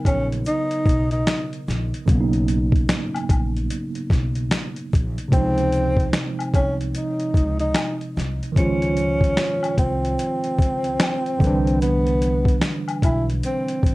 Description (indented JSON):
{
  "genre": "lo-fi hip hop",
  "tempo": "74 BPM",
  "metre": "4/4",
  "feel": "swing 61% on 16ths",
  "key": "Db major",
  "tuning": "A4 = 440 Hz",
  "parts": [
    { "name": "tine electric piano", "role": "accompaniment", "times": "0.0-13.9 s", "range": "C3 to C5", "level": "-25 LUFS", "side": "right 2 dB", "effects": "medium stereo tremolo, cassette tape" },
    { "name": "breathy tenor saxophone", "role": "melody", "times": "0.1-13.9 s", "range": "B3 to E4", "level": "-24 LUFS", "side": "equal", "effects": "plate reverb" },
    { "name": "upright bass", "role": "bass", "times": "0.1-13.9 s", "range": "A1 to Db2", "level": "-25 LUFS", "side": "equal", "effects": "none" },
    { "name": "boom bap sampler-style drum kit", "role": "drums", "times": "0.1-13.9 s", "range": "finger snaps, hi-hat, kick drum, snare drum", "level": "-21 LUFS", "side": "equal", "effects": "vintage 12-bit sampler grit" },
    { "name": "egg shaker and woodblock", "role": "percussion", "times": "0.1-13.9 s", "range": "none", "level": "-33 LUFS", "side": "left 4 dB", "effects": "none" }
  ],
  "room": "light reverb",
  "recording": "none",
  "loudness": "-19 LUFS",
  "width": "side -20 dB against mid",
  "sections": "0.0-5.3 A section; 5.3-13.9 B section",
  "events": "none",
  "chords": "0.0 Cbmaj9; 5.3 Dbmaj9; 11.4 Cmaj9",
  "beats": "0.46 1.27 | 2.08 2.89 3.70 4.51 | 5.32 6.13 6.95 7.76 | 8.57 9.38 10.19 11.00 | 11.81 12.62 13.43"
}